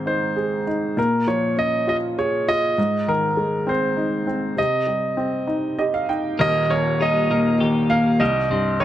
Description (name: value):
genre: six-eight pop ballad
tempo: 66 BPM (dotted quarters)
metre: 6/8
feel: straight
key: unclear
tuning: A4 = 440 Hz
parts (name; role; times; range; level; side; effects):
- warm upright piano; accompaniment; 0.0-8.8 s; Eb1 to G5; -21 LUFS; equal; none
- warm concert grand piano; melody; 0.1-8.8 s; Bb4 to F5; -22 LUFS; right 1 dB; none
- twelve-string electric guitar; arpeggios; 6.4-8.8 s; G3 to G4; -26 LUFS; left 2 dB; spring reverb
room: light reverb, small room reverb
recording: none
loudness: -18 LUFS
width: side -12 dB against mid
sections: 0.0-6.4 A section; 6.4-8.8 B section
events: upright piano fill 5.5-6.4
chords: 0.0 Ab; 1.0 Bbm7; 2.8 Ab; 4.6 Cm; 6.4 Eb; 8.2 Cm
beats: 0.07 | 0.97 1.87 | 2.77 3.67 | 4.58 5.49 | 6.39 7.30 | 8.20